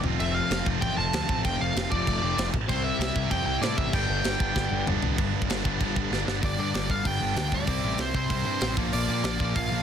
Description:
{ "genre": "punk rock", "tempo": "192 BPM", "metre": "4/4", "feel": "straight", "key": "unclear", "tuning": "A4 = 440 Hz", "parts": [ { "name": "sludgy distorted guitar", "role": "riff", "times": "0.0-9.8 s", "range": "F2 to C4", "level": "-31 LUFS", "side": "left 12 dB", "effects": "overdrive" }, { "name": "tight distorted guitar", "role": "riff", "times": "0.0-9.8 s", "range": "F2 to F4", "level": "-32 LUFS", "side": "right 20 dB", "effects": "distortion" }, { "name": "fuzz picked electric bass", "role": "bass", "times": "0.0-9.8 s", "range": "F1 to Bb2", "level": "-31 LUFS", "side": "equal", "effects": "overdrive" }, { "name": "tight metal drum kit", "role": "drums", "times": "0.0-9.6 s", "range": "crash cymbal, hi-hat, kick drum, snare drum, toms", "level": "-30 LUFS", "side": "equal", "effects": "none" }, { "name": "smooth overdriven lead guitar", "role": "melody", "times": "0.2-9.8 s", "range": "C5 to A5", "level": "-30 LUFS", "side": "equal", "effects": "none" } ], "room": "little or no reverb", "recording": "dense, heavily limited modern master", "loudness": "-24 LUFS", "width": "side -8 dB against mid", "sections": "0.0-5.2 A section; 5.2-6.4 B section; 6.4-9.8 C section", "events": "drum fill 0.0, 4.6-5.2, 6.1-6.4", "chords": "0.0 F; 2.7 C; 3.9 G; 7.7 C; 8.8 Bb" }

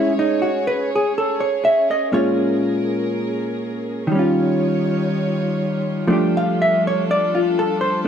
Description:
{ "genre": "jazz ballad", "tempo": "61 BPM", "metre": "4/4", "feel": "swing 67% on 8ths", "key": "unclear", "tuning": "A4 = 440 Hz", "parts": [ { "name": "vintage hollow-body jazz guitar", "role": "accompaniment", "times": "0.0-8.1 s", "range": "A2 to F5", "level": "-18 LUFS", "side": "equal", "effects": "none" }, { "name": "warm chamber string section", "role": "sustained chords", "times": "0.0-8.1 s", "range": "G3 to C#5", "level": "-25 LUFS", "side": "equal", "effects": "none" } ], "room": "light reverb", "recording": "dark, warm production", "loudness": "-17 LUFS", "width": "side -8 dB against mid", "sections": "0.0-8.1 A section", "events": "none", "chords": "0.0 Amaj7; 2.1 Bbm7; 4.1 Eb9; 6.1 F69" }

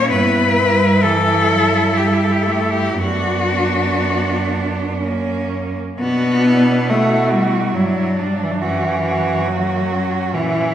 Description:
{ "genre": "classical, lyrical piece for cello ensemble", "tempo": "57-71 BPM", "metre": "3/4", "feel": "rubato", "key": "B minor", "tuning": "A4 = 442 Hz", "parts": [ { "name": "rich cello", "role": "melody", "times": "0.0-10.7 s", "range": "A#3 to B4", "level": "-20 LUFS", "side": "left 4 dB", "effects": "none" }, { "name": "rich cello", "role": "second line", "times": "0.0-10.7 s", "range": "C#4 to F#4", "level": "-22 LUFS", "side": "right 5 dB", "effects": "none" }, { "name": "rich cello", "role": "accompaniment", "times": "0.0-10.7 s", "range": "E3 to B3", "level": "-19 LUFS", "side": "left 1 dB", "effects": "none" }, { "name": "rich cello", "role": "bass", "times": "0.0-10.7 s", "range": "F#2 to B2", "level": "-22 LUFS", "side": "right 2 dB", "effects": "none" } ], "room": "wet recital hall reverb, RT60 1.7 s", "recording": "heard from further back in the room, nothing above 10.9 kHz", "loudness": "-15 LUFS", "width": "side -10 dB against mid", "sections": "0.0-6.0 A section; 6.0-10.7 B section", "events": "none", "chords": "0.1 Em/G; 3.0 Bm/F#; 5.0 F#; 6.0 Bm; 8.6 F#7" }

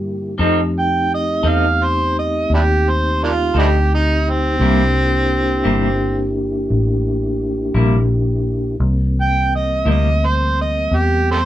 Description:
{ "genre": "slow blues", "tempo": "57 BPM (dotted quarters)", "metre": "12/8", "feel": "straight", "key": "C mixolydian", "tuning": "A4 = 439 Hz", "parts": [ { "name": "mellow tonewheel organ", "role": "sustained chords", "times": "0.0-11.5 s", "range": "D3 to G4", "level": "-22 LUFS", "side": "left 1 dB", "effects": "fast rotary speaker" }, { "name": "vintage muted fingered electric bass", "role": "bass", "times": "0.0-11.5 s", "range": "G1 to G2", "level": "-18 LUFS", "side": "equal", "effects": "none" }, { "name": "clean electric guitar", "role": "accompaniment", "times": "0.4-10.1 s", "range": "C3 to A4", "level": "-19 LUFS", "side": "left 1 dB", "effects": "tremolo" }, { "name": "overdriven harmonica", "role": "melody", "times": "0.8-11.5 s", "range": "Bb3 to G5", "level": "-18 LUFS", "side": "right 2 dB", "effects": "none" } ], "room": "moderate small room ambience, RT60 0.5 s", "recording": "band playing live in one room, faint mains hum", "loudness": "-15 LUFS", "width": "side -13 dB against mid", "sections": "0.0-11.5 A section", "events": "harmonica solo 0.0-11.5", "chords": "0.4 F7; 4.6 C7" }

